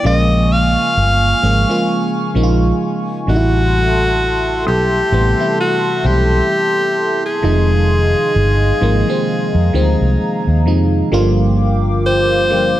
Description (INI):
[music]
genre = R&B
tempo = 65 BPM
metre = 4/4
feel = swing 58% on 16ths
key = unclear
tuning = A4 = 440 Hz
[part]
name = FM electric piano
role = accompaniment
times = 0.0-12.8 s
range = C3 to Ab4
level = -18 LUFS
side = right 1 dB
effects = chorus, phaser
[part]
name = hollow soft pad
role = sustained chords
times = 0.0-12.8 s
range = Bb3 to D6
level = -23 LUFS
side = equal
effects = chorus
[part]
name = vintage muted fingered electric bass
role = bass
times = 0.0-12.7 s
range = F1 to F2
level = -15 LUFS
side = equal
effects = none
[part]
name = breathy alto saxophone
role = melody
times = 0.1-12.8 s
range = F#4 to F5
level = -17 LUFS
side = left 1 dB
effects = tape echo
[sound]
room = little or no reverb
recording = none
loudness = -12 LUFS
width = side -14 dB against mid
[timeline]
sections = 0.0-11.1 A section; 11.1-12.8 B section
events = none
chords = 0.0 Bbm7; 3.3 Am7; 7.4 Fm7; 11.1 Gm7